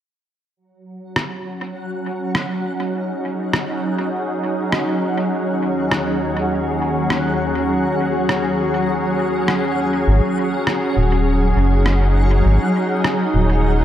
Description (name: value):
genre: ambient dub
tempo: 101 BPM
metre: 4/4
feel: straight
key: unclear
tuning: A4 = 440 Hz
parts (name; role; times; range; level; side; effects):
- soft additive organ-like pad; sustained chords; 0.9-13.8 s; Eb2 to Ab4; -19 LUFS; equal; ensemble chorus, built-in reverb
- backwards swelling texture; texture; 1.5-13.8 s; Gb3 to Gb5; -27 LUFS; left 1 dB; built-in reverb, ensemble chorus
- electronic rim click; drums; 1.2-13.2 s; none; -24 LUFS; equal; dub echo
- round analog bass; bass; 10.1-13.8 s; Eb1 to Ab1; -15 LUFS; equal; none
room: wet lush hall reverb, RT60 2.1 s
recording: dreamy mix soaked in reverb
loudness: -17 LUFS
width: side -11 dB against mid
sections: 0.6-13.8 A section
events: filter sweep on ambient pad 0.6-13.8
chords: 0.6 Ab7sus4